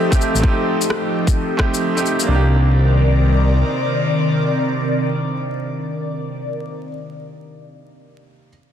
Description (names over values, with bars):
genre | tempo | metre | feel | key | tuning
future garage | 130 BPM | 4/4 | swing 63% on 16ths | C dorian | A4 = 440 Hz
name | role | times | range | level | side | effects
bright upright piano | accompaniment | 0.0-8.5 s | A3 to G4 | -24 LUFS | right 3 dB | sidechain pumping, dub echo
airy breathy pad | sustained chords | 0.0-6.7 s | C3 to D5 | -20 LUFS | left 1 dB | chorus, phaser, vintage 12-bit sampler grit, sidechain pumping
electronic kick drum | drums | 0.1-1.7 s | none | -17 LUFS | equal | none
electronic shaker and rim click | drums | 0.1-2.3 s | none | -24 LUFS | left 2 dB | soft clipping on snare
dark detuned saw bass | bass | 0.3-3.6 s | A1 to C2 | -14 LUFS | equal | sidechain pumping
room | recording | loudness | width
light reverb, digital ambience | dense, heavily limited modern master, vinyl crackle | -16 LUFS | side -9 dB against mid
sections
0.0-2.3 A section; 2.3-6.0 B section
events
none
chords
0.0 F7; 2.3 Cm9